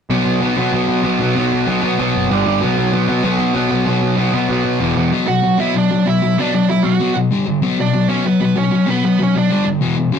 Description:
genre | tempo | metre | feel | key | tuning
punk | 191 BPM | 4/4 | straight | B minor | A4 = 441 Hz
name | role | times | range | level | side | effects
overdriven electric guitar | riff | 0.1-5.1 s | E2 to B3 | -19 LUFS | right 8 dB | none
sludgy distorted guitar | riff | 0.1-10.2 s | E2 to B3 | -15 LUFS | left 3 dB | overdrive
fuzz picked electric bass | bass | 0.1-5.1 s | E1 to B2 | -23 LUFS | right 2 dB | overdrive
high-gain lead guitar | melody | 5.3-9.7 s | B3 to F#5 | -20 LUFS | right 8 dB | distortion
room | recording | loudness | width
moderate studio ambience, RT60 0.5 s | rough rehearsal-room recording | -14 LUFS | side -7 dB against mid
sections
0.1-5.1 A section; 5.1-10.2 B section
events
none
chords
0.1 B5; 2.3 G5; 2.6 B5; 4.8 E5; 5.1 Bm; 7.3 G5; 7.6 Bm; 9.5 G5; 9.8 E5

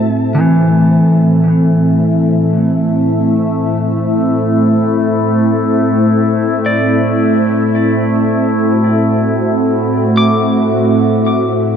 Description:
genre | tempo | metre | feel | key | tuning
ambient | free time | none | none | A dorian | A4 = 440 Hz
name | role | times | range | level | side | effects
warm analog pad | sustained chords | 0.0-11.8 s | A2 to E5 | -12 LUFS | equal | chorus
overtone-sweeping drone | drone | 0.0-11.8 s | A3 to E4 | -20 LUFS | left 1 dB | chorus, built-in reverb
clean electric guitar | arpeggios | 0.3-11.8 s | E3 to D6 | -16 LUFS | equal | tape echo
room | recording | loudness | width
wet cathedral reverb, RT60 6.3 s | dark, warm production | -10 LUFS | side -7 dB against mid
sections
0.1-11.8 A section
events
none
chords
0.1 Am

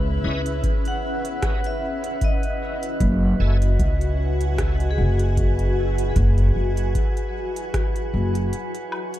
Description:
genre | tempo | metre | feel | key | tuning
ambient dub | 76 BPM | 4/4 | swing 55% on 16ths | unclear | A4 = 440 Hz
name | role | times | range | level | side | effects
granular cloud pad | sustained chords | 0.0-9.2 s | C#4 to G#5 | -29 LUFS | left 1 dB | built-in reverb
vibraphone with medium hard mallets | arpeggios | 0.0-8.5 s | G#4 to F#5 | -32 LUFS | left 1 dB | dub echo
upright bass | bass | 0.0-8.5 s | F#1 to C#2 | -20 LUFS | equal | none
drifting glass-harmonics texture | texture | 0.0-9.2 s | B4 to C#5 | -35 LUFS | right 2 dB | chorus, built-in reverb
bright tonewheel organ | stabs | 0.2-3.6 s | C#4 to G#5 | -38 LUFS | equal | overdrive, chorus vibrato, slow rotary speaker, dub echo
organic electronic drum kit | drums | 0.5-9.2 s | hi-hat, rim click, woodblock | -34 LUFS | equal | overdrive, dub echo
electronic kick drum | drums | 0.6-7.9 s | none | -25 LUFS | equal | none
room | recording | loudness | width
digital ambience | dark, warm production | -20 LUFS | side -13 dB against mid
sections
0.0-8.5 A section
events
filter sweep on tonewheel organ 0.0-8.5; filter sweep on vibraphone 0.0-8.5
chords
0.0 C#m9; 2.2 F#7sus2; 8.5 C#m7

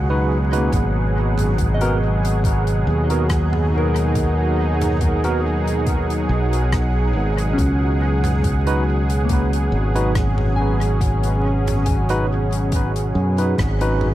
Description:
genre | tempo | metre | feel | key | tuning
ambient dub | 70 BPM | 4/4 | swing 54% on 16ths | G# minor | A4 = 440 Hz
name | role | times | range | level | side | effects
warm analog pad | sustained chords | 0.0-14.1 s | B2 to G#4 | -23 LUFS | right 1 dB | chorus
soft synth bell | arpeggios | 0.0-14.1 s | A#3 to G#5 | -30 LUFS | left 2 dB | chorus, dub echo
modern bright fingered electric bass | bass | 0.0-14.1 s | G#1 to F#2 | -19 LUFS | equal | none
wind-like tuned noise texture | texture | 0.0-14.1 s | F#5 | -32 LUFS | right 3 dB | built-in reverb
barky tine electric piano | stabs | 0.1-14.1 s | B3 to B4 | -27 LUFS | right 1 dB | medium stereo tremolo, dub echo
big rock drum kit | drums | 0.5-14.1 s | hi-hat, rim click, toms | -32 LUFS | equal | dub echo
electronic kick drum | drums | 0.7-13.8 s | none | -22 LUFS | equal | overdrive
room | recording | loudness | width
light reverb, small room ambience | vinyl crackle | -17 LUFS | side -14 dB against mid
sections
0.0-14.1 A section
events
band accent 13.6-14.0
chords
0.0 G#m7

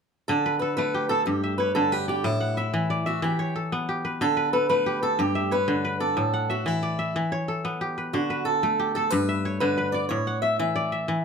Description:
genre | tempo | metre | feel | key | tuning
west african traditional, West African string and xylophone music | 122 BPM (dotted quarters) | 12/8 | straight | D major | A4 = 440 Hz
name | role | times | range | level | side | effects
fingerpicked swing-style acoustic guitar | melody | 0.3-11.2 s | E4 to E5 | -25 LUFS | right 1 dB | none
kora | arpeggios | 0.3-11.2 s | G2 to F#5 | -26 LUFS | left 1 dB | none
room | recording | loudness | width
wet studio reverb, RT60 0.5 s | none | -23 LUFS | side -6 dB against mid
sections
0.3-11.2 A section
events
none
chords
0.3 D5; 1.3 G; 2.2 A5; 3.2 Em; 4.2 D5; 5.2 G; 6.2 A5; 7.2 Em; 8.1 D; 9.1 G; 10.1 A

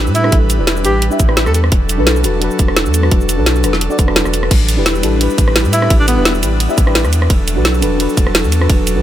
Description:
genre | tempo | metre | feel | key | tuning
liquid drum and bass | 172 BPM | 4/4 | swing 53% on 16ths | unclear | A4 = 440 Hz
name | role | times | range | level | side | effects
mellow FM electric piano | accompaniment | 0.0-9.0 s | D4 to E5 | -19 LUFS | left 1 dB | chorus, phaser, digital delay
airy breathy pad | sustained chords | 0.0-9.0 s | F#3 to B4 | -22 LUFS | right 1 dB | chorus, sidechain pumping
warm sub bass | bass | 0.0-9.0 s | E1 to A2 | -16 LUFS | equal | none
drum and bass drum kit | drums | 0.1-8.9 s | crash cymbal, hi-hat, ride cymbal, rim click, shaker, snare drum | -17 LUFS | right 1 dB | none
breathy alto saxophone | melody | 0.2-1.6, 5.7-6.3 s | B3 to A4 | -21 LUFS | equal | ping-pong delay
electronic kick drum | drums | 0.3-8.8 s | none | -12 LUFS | equal | none
room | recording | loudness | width
little or no reverb | none | -11 LUFS | side -12 dB against mid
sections
0.0-9.0 A section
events
none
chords
0.0 A9sus4; 1.5 E9sus4; 4.5 A9sus4; 7.1 E9sus4

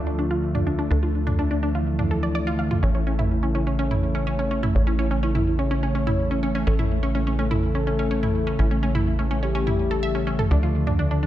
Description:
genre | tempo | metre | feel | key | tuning
melodic techno | 125 BPM | 4/4 | straight | unclear | A4 = 440 Hz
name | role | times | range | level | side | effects
soft octave-layered synth lead | melody | 0.0-11.3 s | D3 to C#5 | -29 LUFS | left 1 dB | chorus, cassette tape, tape echo
analog synth brass | stabs | 0.0-11.3 s | C#3 to A3 | -27 LUFS | left 1 dB | chorus, tape echo
tight sequencer bass | bass | 0.0-11.3 s | A1 to D2 | -24 LUFS | equal | none
wide unison pluck | arpeggios | 0.1-11.3 s | C#4 to F5 | -28 LUFS | right 1 dB | cassette tape, tape echo
electronic toms | drums | 0.6-11.0 s | none | -27 LUFS | right 1 dB | small room ambience
room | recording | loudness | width
light reverb | none | -20 LUFS | side -13 dB against mid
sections
0.0-11.3 A section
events
filter sweep on soft synth lead 0.0-11.3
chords
0.0 Dm; 2.8 A; 10.5 Dm

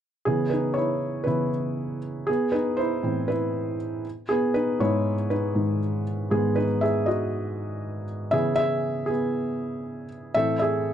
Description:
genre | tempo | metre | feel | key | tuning
pop | 119 BPM | 4/4 | straight | unclear | A4 = 439 Hz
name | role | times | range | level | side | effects
felt-muted upright piano | accompaniment | 0.3-10.9 s | G#2 to E5 | -23 LUFS | equal | none
room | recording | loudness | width
moderate studio ambience, RT60 0.5 s | dark, warm production, nothing above 10.9 kHz | -23 LUFS | side -9 dB against mid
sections
0.3-10.9 A section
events
felt piano solo 0.3-10.9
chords
0.3 C#m7; 2.3 Amadd9; 4.0 Emaj7/G#; 8.3 C#m7; 10.4 Am

